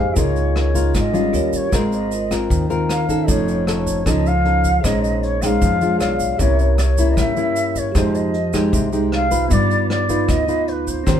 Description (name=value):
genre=bossa nova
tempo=154 BPM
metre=4/4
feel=straight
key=unclear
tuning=A4 = 441 Hz
part: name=mellow bansuri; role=melody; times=0.0-11.2 s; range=B4 to G5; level=-22 LUFS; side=equal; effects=none
part: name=bell-like tine electric piano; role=accompaniment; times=0.0-11.2 s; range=B3 to D6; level=-26 LUFS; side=right 3 dB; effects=none
part: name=nylon-string guitar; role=accompaniment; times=0.0-11.2 s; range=Ab2 to C5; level=-20 LUFS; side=left 1 dB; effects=none
part: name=upright bass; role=bass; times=0.0-11.2 s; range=F1 to G2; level=-21 LUFS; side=equal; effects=none
part: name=vintage brush drum kit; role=drums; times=0.2-11.2 s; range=hi-hat, kick drum, rim click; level=-24 LUFS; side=equal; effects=none
part: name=tube shaker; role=percussion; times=0.2-11.2 s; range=none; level=-32 LUFS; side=right 5 dB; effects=none
room=moderate studio reverb, RT60 0.6 s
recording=band playing live in one room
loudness=-16 LUFS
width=side -9 dB against mid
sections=0.2-11.2 A section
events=tine electric piano fill 0.0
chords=0.2 Db69; 1.3 Eb9; 1.7 Ab69; 3.3 Faug7; 4.8 Bbm11; 6.0 Bdim7; 6.4 C7b9; 8.0 Fm9; 9.5 G7b13